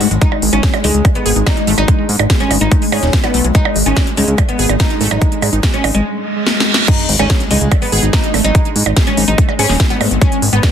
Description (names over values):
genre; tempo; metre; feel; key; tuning
psychedelic trance; 144 BPM; 4/4; straight; G# minor; A4 = 440 Hz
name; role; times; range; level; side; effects
oud; melody; 0.0-10.7 s; G#3 to F#4; -19 LUFS; equal; phaser, sidechain pumping, dub echo
pulsing gated texture; sustained chords; 0.0-10.7 s; G#3; -21 LUFS; left 1 dB; chorus, built-in reverb, sidechain pumping
wide unison pluck; riff; 0.0-10.7 s; F#3 to G#4; -22 LUFS; moving between left 8 dB and right 8 dB; auto-pan, sidechain pumping, dub echo
fat analog bass; bass; 0.0-10.6 s; D#1 to G#2; -16 LUFS; equal; none
techno drum kit; drums; 0.0-10.7 s; crash cymbal, hi-hat, percussion blips, snare drum; -18 LUFS; right 1 dB; soft clipping on snare
electronic kick drum; drums; 0.2-10.7 s; none; -13 LUFS; equal; none
reverse cymbal and sub drop; sound effects; 6.2-8.5 s; none; -22 LUFS; right 3 dB; none
room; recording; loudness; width
little or no reverb; dense, heavily limited modern master; -11 LUFS; side -8 dB against mid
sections
0.0-6.9 A section; 6.9-10.7 B section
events
reverse cymbal 6.2-6.9; drum fill 6.5-6.9; drop 6.9-10.7; impact 6.9-8.5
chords
0.0 G#5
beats
| 0.21 0.63 1.05 1.47 | 1.88 2.30 2.71 3.13 | 3.55 3.96 4.38 4.80 | 5.21 5.63 6.05 6.46 | 6.88 7.30 7.71 8.13 | 8.55 8.96 9.38 9.80 | 10.21 10.63